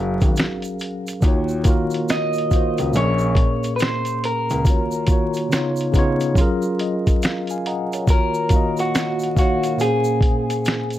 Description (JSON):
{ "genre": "lo-fi hip hop", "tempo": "70 BPM", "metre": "4/4", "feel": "swing 63% on 16ths", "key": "Eb dorian", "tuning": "A4 = 440 Hz", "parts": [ { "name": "electric guitar through a small old amp", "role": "melody", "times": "0.0-11.0 s", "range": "Gb4 to Eb5", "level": "-24 LUFS", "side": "equal", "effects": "none" }, { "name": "tine electric piano", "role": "accompaniment", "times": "0.0-11.0 s", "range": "Bb2 to Bb5", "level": "-22 LUFS", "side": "equal", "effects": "medium stereo tremolo, cassette tape" }, { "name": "dark grand piano", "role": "bass", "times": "0.0-4.7 s", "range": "Gb1 to Eb2", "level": "-24 LUFS", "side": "equal", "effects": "none" }, { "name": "lo-fi sampler-style drum kit", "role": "drums", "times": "0.2-11.0 s", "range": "finger snaps, hi-hat, kick drum, snare drum", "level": "-19 LUFS", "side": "equal", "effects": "none" }, { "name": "egg shaker", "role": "percussion", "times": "0.2-11.0 s", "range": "none", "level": "-40 LUFS", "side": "right 6 dB", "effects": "none" } ], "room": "light reverb", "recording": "vinyl crackle", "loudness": "-17 LUFS", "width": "side -13 dB against mid", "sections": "0.0-11.0 A section", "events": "tine electric piano fill 6.4-8.1", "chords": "0.0 Gbmaj7; 1.2 Ebm7; 2.9 Bbm7; 4.7 Ebm7; 5.5 Db7; 6.4 Gbmaj7; 8.1 Ebm7; 9.8 Bbm7" }